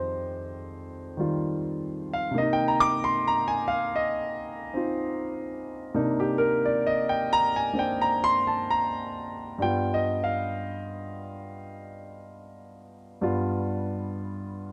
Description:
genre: solo jazz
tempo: 67 BPM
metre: 4/4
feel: swing 68% on 8ths, rubato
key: C minor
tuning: A4 = 439 Hz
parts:
  - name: warm concert grand piano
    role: solo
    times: 0.0-14.7 s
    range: F2 to D6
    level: -28 LUFS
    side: equal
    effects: none
room: light reverb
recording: close, detailed microphones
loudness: -27 LUFS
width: mono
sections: 0.0-14.7 A section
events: grand piano solo 0.0-14.7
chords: 0.0 Fm9; 2.4 Cm9; 9.6 G7

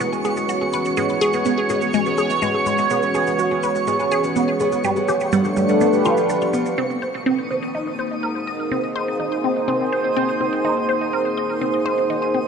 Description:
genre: ambient, sequencer-driven space music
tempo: 124 BPM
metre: 4/4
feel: straight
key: G# minor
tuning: A4 = 440 Hz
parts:
  - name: sweeping resonant pad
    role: sustained chords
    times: 0.0-12.5 s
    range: E3 to C#5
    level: -21 LUFS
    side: right 2 dB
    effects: chorus, shimmer reverb
  - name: concert harp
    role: arpeggios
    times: 0.0-12.5 s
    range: F3 to G#4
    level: -29 LUFS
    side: equal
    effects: auto-pan, tape echo, shimmer reverb
  - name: resonant blip pluck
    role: riff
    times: 0.0-12.5 s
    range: G3 to Eb5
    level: -22 LUFS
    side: equal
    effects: phaser, tape echo, shimmer reverb
  - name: cabasa and woodblock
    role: percussion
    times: 0.0-6.8 s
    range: none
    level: -37 LUFS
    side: equal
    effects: tape echo
  - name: twinkling granular texture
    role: texture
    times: 0.0-12.5 s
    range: C#6 to Eb6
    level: -30 LUFS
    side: right 2 dB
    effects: built-in reverb, shimmer reverb
room: wet plate reverb, RT60 3.4 s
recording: cassette tape, nothing above 10.9 kHz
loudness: -18 LUFS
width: side -6 dB against mid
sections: 0.0-6.8 A section; 6.8-12.5 B section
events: none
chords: 0.0 G#m; 4.8 G7; 6.8 Cdim

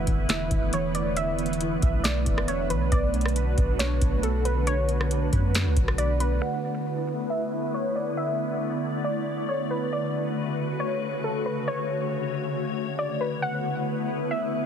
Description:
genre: hip hop, atmospheric cloud-rap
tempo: 137 BPM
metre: 4/4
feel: half-time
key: unclear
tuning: A4 = 438 Hz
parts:
  - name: warbly dusty pluck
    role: melody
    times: 0.0-14.7 s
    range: A4 to F#5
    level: -30 LUFS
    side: equal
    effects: chorus, low-pass filter, tape echo
  - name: glassy FM pad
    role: sustained chords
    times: 0.0-14.7 s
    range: C#3 to D5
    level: -29 LUFS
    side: equal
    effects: ensemble chorus, built-in reverb, sidechain pumping, low-pass filter
  - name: warbly lo-fi synth keys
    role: arpeggios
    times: 0.0-6.4 s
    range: E3 to E5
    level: -33 LUFS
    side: right 3 dB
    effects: chorus, phaser, low-pass filter, tape echo
  - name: soft 808-style bass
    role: bass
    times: 0.0-6.4 s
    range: E1 to F#2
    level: -26 LUFS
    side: equal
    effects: none
  - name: booming analog drum machine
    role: drums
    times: 0.1-6.3 s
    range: hi-hat, kick drum, rim click, snare drum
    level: -26 LUFS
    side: equal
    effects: none
room: little or no reverb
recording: heavily compressed radio sound, multiband compression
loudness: -24 LUFS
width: side -8 dB against mid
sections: 0.0-6.4 A section; 6.4-13.4 B section; 13.4-14.7 A section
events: filter sweep 6.4-13.4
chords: 0.0 E7sus4; 2.9 Bm9; 6.4 E7sus4; 9.9 Bm9; 13.4 E7sus4

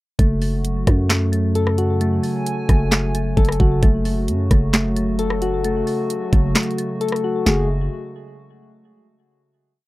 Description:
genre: hip hop, trap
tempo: 132 BPM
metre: 4/4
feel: half-time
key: F# minor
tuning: A4 = 439 Hz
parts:
  - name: hollow soft pad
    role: sustained chords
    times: 0.2-7.7 s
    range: C#3 to G#5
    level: -27 LUFS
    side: right 1 dB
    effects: chorus
  - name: soft electric-piano-like synth keys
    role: arpeggios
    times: 0.2-7.7 s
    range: A3 to A4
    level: -23 LUFS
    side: left 2 dB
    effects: chorus, ping-pong delay
  - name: growling 808-style bass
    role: bass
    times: 0.2-7.9 s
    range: F#1 to F#2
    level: -20 LUFS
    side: equal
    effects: none
  - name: trap drum kit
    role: drums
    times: 0.2-7.6 s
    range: handclaps, hi-hat, kick drum, rim click, snare drum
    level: -18 LUFS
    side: equal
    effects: none
room: little or no reverb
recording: dark, warm production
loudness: -17 LUFS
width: side -18 dB against mid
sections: 0.2-7.5 verse; 7.5-9.3 final chord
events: kick muted 6.6-7.5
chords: 0.2 F#madd9; 3.8 F#m; 7.5 F#madd9

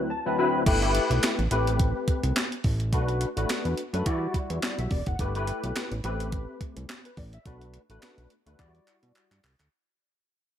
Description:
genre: early-eighties boogie funk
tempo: 106 BPM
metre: 4/4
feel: swing 56% on 16ths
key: unclear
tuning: A4 = 440 Hz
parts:
  - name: barky tine electric piano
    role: accompaniment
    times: 0.0-9.5 s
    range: D2 to A5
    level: -28 LUFS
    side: left 2 dB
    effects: ensemble chorus
  - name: fat analog bass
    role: bass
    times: 0.7-9.7 s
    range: E1 to E3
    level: -28 LUFS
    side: equal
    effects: none
  - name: clean 12-bit digital drum machine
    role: drums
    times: 0.7-9.7 s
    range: crash cymbal, handclaps, hi-hat, kick drum, snare drum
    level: -28 LUFS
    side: equal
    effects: overdrive
room: little or no reverb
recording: none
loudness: -24 LUFS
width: side -10 dB against mid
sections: 0.7-9.7 A section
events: break 0.0-0.7; tine electric piano fill 0.0-0.7; fade-out 0.7-9.7; drum fill 8.6-9.7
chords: 0.0 D13; 0.7 G69; 1.5 Am9; 2.9 Bm7; 4.1 Em9; 5.2 G69; 6.0 Am9; 7.5 Bm7; 8.6 Em9

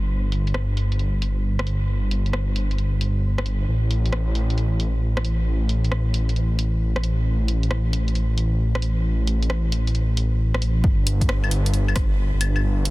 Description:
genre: future garage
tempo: 134 BPM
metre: 4/4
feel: swing 67% on 16ths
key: unclear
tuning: A4 = 441 Hz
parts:
  - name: swelling detuned saw bass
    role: bass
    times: 0.0-12.9 s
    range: G1 to A1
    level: -20 LUFS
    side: equal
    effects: sidechain pumping
  - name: deep house drum kit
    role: drums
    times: 0.3-12.9 s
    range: claves, hi-hat, rim click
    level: -31 LUFS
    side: equal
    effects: overdrive, low-pass filter on hats, low-pass filter on snare, low-pass filter on perc, low-pass filter on cymbals
  - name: electronic kick drum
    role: drums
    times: 10.8-12.1 s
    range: none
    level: -21 LUFS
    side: equal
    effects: overdrive
room: little or no reverb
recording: dense, heavily limited modern master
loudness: -20 LUFS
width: side -20 dB against mid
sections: 0.0-10.8 A section; 10.8-12.9 B section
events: none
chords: none

